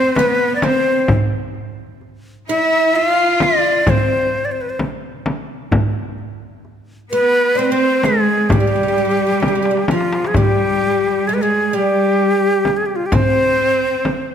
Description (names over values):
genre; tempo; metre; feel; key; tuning
Turkish makam ensemble; 130 BPM (eighths); 10/8; straight; G makam hicaz; A4 = 440 Hz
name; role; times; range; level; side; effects
breathy bright ney; melody; 0.0-14.3 s; F4 to F5; -16 LUFS; left 2 dB; none
clear symphonic cello section; second line; 0.0-14.3 s; F3 to F4; -21 LUFS; right 2 dB; none
oud; second line; 0.0-14.3 s; F3 to E4-40c; -24 LUFS; right 4 dB; none
darbuka; percussion; 0.2-14.3 s; none; -21 LUFS; right 1 dB; none
frame drum; percussion; 0.2-14.3 s; none; -22 LUFS; left 1 dB; none
room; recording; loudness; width
moderate scoring stage reverb, RT60 2.2 s; none; -14 LUFS; side -8 dB against mid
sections
0.0-10.4 A section; 10.4-14.3 B section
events
drum fill 9.4-10.4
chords
none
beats
0.17 0.63 | 1.10 1.56 2.02 2.49 2.95 3.41 3.88 4.34 4.80 5.26 | 5.73 6.19 6.65 7.12 7.58 8.04 8.51 8.97 9.43 9.89 | 10.36 10.82 11.28 11.75 12.21 12.67 13.13 13.60 14.06